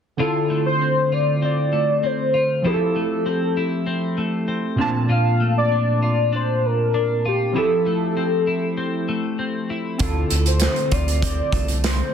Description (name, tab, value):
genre	indie pop, bedroom pop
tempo	98 BPM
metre	4/4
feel	straight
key	unclear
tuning	A4 = 441 Hz
part	warm velvety synth lead	melody	0.2-12.1 s	G4 to F5	-22 LUFS	left 1 dB	analog chorus, digital delay
part	twelve-string electric guitar	accompaniment	0.2-12.1 s	Bb2 to F4	-23 LUFS	left 3 dB	lush chorus, warbly pitch drift
part	warbly lo-fi synth keys	accompaniment	0.2-12.1 s	Bb2 to A5	-25 LUFS	right 4 dB	chorus, cassette tape
part	round analog bass	bass	10.0-12.0 s	C2 to D2	-21 LUFS	right 1 dB	none
part	loose indie drum kit	drums	10.0-12.0 s	hi-hat, kick drum, snare drum	-23 LUFS	right 1 dB	none
room	moderate studio reverb, RT60 0.5 s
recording	dense, heavily limited modern master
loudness	-18 LUFS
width	side -8 dB against mid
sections	0.2-12.1 A section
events	none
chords	0.2 Dm7; 2.6 Fmaj7; 4.8 Bbmaj7; 7.6 Fmaj7; 10.0 Dm7